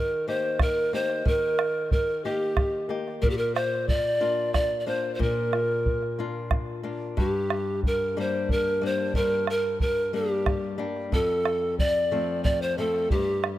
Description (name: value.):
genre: andean folk, Andean ensemble.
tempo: 61 BPM (dotted quarters).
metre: 6/8.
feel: straight.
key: G minor.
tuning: A4 = 440 Hz.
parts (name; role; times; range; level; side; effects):
breathy pan flute; melody; 0.0-13.6 s; G4 to D5; -25 LUFS; equal; none.
flamenco guitar; accompaniment; 0.0-13.6 s; F2 to G4; -31 LUFS; left 4 dB; none.
bombo; percussion; 0.6-13.6 s; none; -26 LUFS; right 1 dB; none.
room: light reverb, small room ambience.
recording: rough home demo mix.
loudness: -23 LUFS.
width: side -14 dB against mid.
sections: 0.0-13.6 A section.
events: none.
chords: 0.0 Eb; 3.2 Bb; 7.2 Gm; 11.1 F.